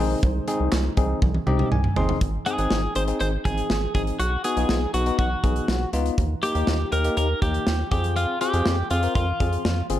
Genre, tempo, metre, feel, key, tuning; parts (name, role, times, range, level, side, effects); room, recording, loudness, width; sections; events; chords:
synth-pop; 121 BPM; 4/4; straight; Ab major; A4 = 441 Hz
twelve-string electric guitar; melody; 0.0-9.9 s; F4 to C5; -27 LUFS; equal; tape echo
bell-like tine electric piano; accompaniment; 0.0-10.0 s; Bb3 to C6; -27 LUFS; left 3 dB; medium stereo tremolo
warm analog pad; sustained chords; 0.0-2.2 s; C3 to Eb4; -34 LUFS; equal; chorus
rubbery square bass; bass; 0.0-10.0 s; G1 to F2; -24 LUFS; equal
modern studio drum kit; drums; 0.2-10.0 s; handclaps, hi-hat, kick drum, snare drum, toms; -26 LUFS; equal
light reverb, small room ambience; dark, warm production; -21 LUFS; side -12 dB against mid
0.0-2.2 A section; 2.2-10.0 B section
drum fill 1.2-2.2; tine electric piano fill 1.2-2.2
0.0 Ab; 4.2 Badd9; 6.2 Eb; 7.9 Fm